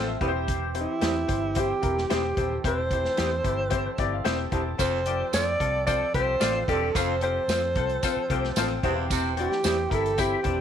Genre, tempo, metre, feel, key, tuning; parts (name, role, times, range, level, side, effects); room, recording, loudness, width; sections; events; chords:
uptempo 1960s-style soul; 111 BPM; 4/4; straight; F major; A4 = 440 Hz
clear upright piano; accompaniment; 0.0-10.6 s; C4 to A5; -30 LUFS; left 11 dB
percussive tonewheel organ; sustained chords; 0.0-10.6 s; E3 to A4; -36 LUFS; right 13 dB; overdrive, lush chorus
electric guitar through a small old amp; stabs; 0.0-9.8 s; E4 to C5; -34 LUFS; right 14 dB
vintage muted fingered electric bass; bass; 0.0-10.6 s; Eb1 to F2; -31 LUFS; right 1 dB
vintage drum kit; drums; 0.2-10.6 s; hi-hat, kick drum, snare drum; -31 LUFS; equal
mellow alto saxophone; melody; 0.8-10.6 s; E4 to D5; -27 LUFS; right 1 dB
clean electric guitar; riff; 4.8-10.6 s; C4 to A4; -33 LUFS; left 11 dB; ensemble chorus
raspy baritone saxophone; riff; 4.8-9.3 s; E2 to C3; -33 LUFS; right 13 dB
tambourine; percussion; 4.8-10.3 s; -36 LUFS; right 14 dB
light reverb, studio ambience; 1960s-style stereo with parts hard left and right; -23 LUFS; side -8 dB against mid
0.0-10.6 A section
upright piano fill 0.0-0.5, 3.7-4.8, 8.3-9.1
0.2 C; 4.8 F; 8.8 C